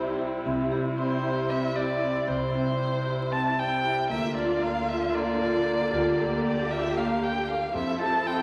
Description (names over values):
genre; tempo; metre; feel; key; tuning
contemporary instrumental, chamber music in an uneven meter; 230 BPM (eighths); 7/8; straight; C major; A4 = 439 Hz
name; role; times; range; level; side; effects
warm violin; melody; 0.0-8.4 s; C5 to A5; -31 LUFS; equal; none
warm symphonic string section; sustained chords; 0.0-8.4 s; C3 to A4; -32 LUFS; equal; none
upright bass; bass; 0.0-8.4 s; C2 to F2; -37 LUFS; equal; none
vibraphone with medium hard mallets; arpeggios; 0.2-8.4 s; Bb3 to G4; -32 LUFS; equal; none
room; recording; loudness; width
wet concert hall reverb, RT60 1.9 s; vinyl crackle; -27 LUFS; mono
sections
0.0-8.4 A section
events
none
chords
0.0 C; 4.1 Bb/D; 7.7 Fmaj7